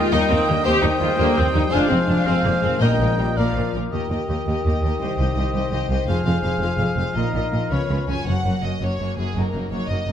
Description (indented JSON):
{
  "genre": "cinematic, heroic adventure film score",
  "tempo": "111 BPM (dotted quarters)",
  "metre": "6/8",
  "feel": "straight",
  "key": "Eb major",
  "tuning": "A4 = 440 Hz",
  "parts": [
    { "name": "warm symphonic violin section", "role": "melody", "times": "0.0-10.1 s", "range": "G#4 to Ab5", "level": "-31 LUFS", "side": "left 2 dB", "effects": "none" },
    { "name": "concert flute", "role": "second line", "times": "0.0-8.1 s", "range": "G5 to Cb6", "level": "-33 LUFS", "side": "equal", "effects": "none" },
    { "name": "dark clarinet", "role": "second line", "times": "0.0-8.1 s", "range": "Bb4 to Eb5", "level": "-30 LUFS", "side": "left 2 dB", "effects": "none" },
    { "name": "mellow cor anglais", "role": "second line", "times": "0.0-8.0 s", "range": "Eb5 to G5", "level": "-29 LUFS", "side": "right 2 dB", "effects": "none" },
    { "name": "rich symphonic viola section", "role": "accompaniment", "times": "0.0-10.1 s", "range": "F3 to Ab4", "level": "-26 LUFS", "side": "left 1 dB", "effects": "none" },
    { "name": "dark French horn section", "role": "sustained chords", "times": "0.0-8.1 s", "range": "Bb2 to Ab4", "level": "-30 LUFS", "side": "left 4 dB", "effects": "none" },
    { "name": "mellow trombone section", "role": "sustained chords", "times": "0.0-3.8 s", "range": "Eb3 to Bb3", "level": "-31 LUFS", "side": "right 4 dB", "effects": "none" },
    { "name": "concert harp", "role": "arpeggios", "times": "0.0-10.1 s", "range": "F2 to Ab5", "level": "-30 LUFS", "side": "left 11 dB", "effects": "none" },
    { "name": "dark trumpet section", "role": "stabs", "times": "0.0-3.7 s", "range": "C5 to Eb5", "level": "-28 LUFS", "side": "right 2 dB", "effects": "none" },
    { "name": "rich studio double bass section", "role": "bass", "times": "0.0-10.1 s", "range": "F1 to Eb2", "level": "-26 LUFS", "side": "right 2 dB", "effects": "none" },
    { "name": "warm symphonic cello section", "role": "bass", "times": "0.0-10.1 s", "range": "C2 to Db3", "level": "-25 LUFS", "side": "right 1 dB", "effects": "none" },
    { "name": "timpani", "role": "percussion", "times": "0.0-0.1, 2.8-3.3, 8.3-9.9 s", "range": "F#2 to Bb2", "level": "-28 LUFS", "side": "left 2 dB", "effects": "none" },
    { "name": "warm studio violin section", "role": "second line", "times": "0.1-10.1 s", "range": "C#4 to Eb5", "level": "-31 LUFS", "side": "left 3 dB", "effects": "none" }
  ],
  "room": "moderate scoring stage reverb, RT60 1.8 s",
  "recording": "none",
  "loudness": "-18 LUFS",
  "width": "side -9 dB against mid",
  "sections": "0.0-3.9 A section; 3.9-8.3 B section; 8.3-10.1 C section",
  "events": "none",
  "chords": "0.0 Eb; 1.7 Fm; 2.8 Eb/Bb; 3.4 Bb; 3.9 Eb; 5.0 Cm; 6.1 Fm; 7.2 Bbsus4; 7.7 Db7; 8.3 F#; 9.3 D#m/F#",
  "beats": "0.12 | 0.66 1.19 | 1.73 2.27 | 2.82 3.38 | 3.94 4.48 | 5.02 5.55 | 6.09 6.62 | 7.16 7.71 | 8.27 8.81 | 9.35 9.89"
}